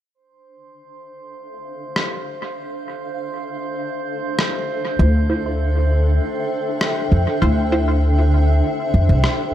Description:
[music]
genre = ambient dub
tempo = 99 BPM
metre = 4/4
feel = straight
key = D minor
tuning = A4 = 440 Hz
[part]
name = granular cloud pad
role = sustained chords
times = 1.3-9.5 s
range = D4 to G5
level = -24 LUFS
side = equal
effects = built-in reverb
[part]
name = drifting glass-harmonics texture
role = texture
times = 0.9-9.5 s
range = C5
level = -29 LUFS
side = right 1 dB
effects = chorus, built-in reverb
[part]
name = electronic rim click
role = drums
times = 2.0-9.4 s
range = none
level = -24 LUFS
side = equal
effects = dub echo
[part]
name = filtered dub chord stab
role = stabs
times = 5.0-7.8 s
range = E4 to C5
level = -26 LUFS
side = right 1 dB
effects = phaser, dub echo
[part]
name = upright bass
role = bass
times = 5.0-9.2 s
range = C2 to F2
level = -15 LUFS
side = equal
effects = none
[sound]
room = light reverb, digital ambience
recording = none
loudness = -17 LUFS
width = side -11 dB against mid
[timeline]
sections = 0.1-9.5 A section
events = fade-in on ambient pad 0.1-9.5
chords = 0.1 Dm7

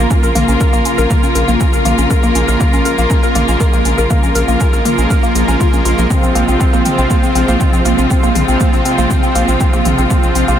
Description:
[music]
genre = melodic techno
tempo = 120 BPM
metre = 4/4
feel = straight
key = Bb minor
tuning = A4 = 440 Hz
[part]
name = warm studio string section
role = sustained chords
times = 0.0-10.6 s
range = C3 to F4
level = -19 LUFS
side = left 3 dB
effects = sidechain pumping
[part]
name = woody wave-folded pluck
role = arpeggios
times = 0.0-10.6 s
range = Bb3 to Bb4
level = -17 LUFS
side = left 1 dB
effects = chorus, sidechain pumping, analog delay
[part]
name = brassy analog pad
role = stabs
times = 0.0-10.6 s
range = F3 to Bb4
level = -18 LUFS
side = right 2 dB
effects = chorus, sidechain pumping, analog delay
[part]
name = round analog bass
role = bass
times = 0.0-10.6 s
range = Bb1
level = -16 LUFS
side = equal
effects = sidechain pumping
[part]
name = electronic kick drum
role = drums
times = 0.1-10.2 s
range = none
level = -14 LUFS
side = equal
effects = none
[part]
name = techno drum kit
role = drums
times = 0.1-10.6 s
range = hi-hat, rim click, shaker, toms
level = -23 LUFS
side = equal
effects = none
[sound]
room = moderate huge ambient reverb, RT60 7.5 s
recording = dreamy mix soaked in reverb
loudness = -10 LUFS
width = side -10 dB against mid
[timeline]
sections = 0.0-10.6 A section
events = none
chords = 0.0 Bbm; 6.1 Fm/Bb

